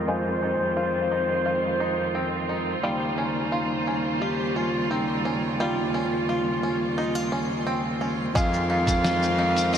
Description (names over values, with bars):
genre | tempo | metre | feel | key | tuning
folktronica | 87 BPM | 4/4 | straight | F minor | A4 = 440 Hz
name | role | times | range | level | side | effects
mellow clarinet | melody | 0.0-9.8 s | Eb4 to F5 | -27 LUFS | equal | analog delay
clear string quartet | sustained chords | 0.0-9.8 s | Db3 to C5 | -30 LUFS | equal | none
bluegrass banjo | arpeggios | 0.0-9.8 s | G3 to F4 | -30 LUFS | equal | analog delay
rich cello | bass | 0.0-9.8 s | Eb2 to F2 | -28 LUFS | equal | none
backwards swelling texture | texture | 0.0-8.4 s | C5 to C6 | -36 LUFS | equal | built-in reverb
electronic kick drum | drums | 8.4-9.0 s | none | -25 LUFS | equal | none
lo-fi sampler-style drum kit | drums | 8.4-9.8 s | hi-hat, shaker, snare drum | -30 LUFS | left 2 dB | low-pass filter on hats, low-pass filter on perc, low-pass filter on snare, low-pass filter on room
room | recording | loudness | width
wet huge ambient reverb, RT60 4.6 s | dreamy mix soaked in reverb, low-pass filter | -23 LUFS | side -8 dB against mid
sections
0.0-8.4 A section; 8.4-9.8 B section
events
filter sweep on string quartet 0.0-8.4; filter sweep 0.0-8.4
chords
0.0 Fm7; 2.8 Eb13; 8.4 Fm7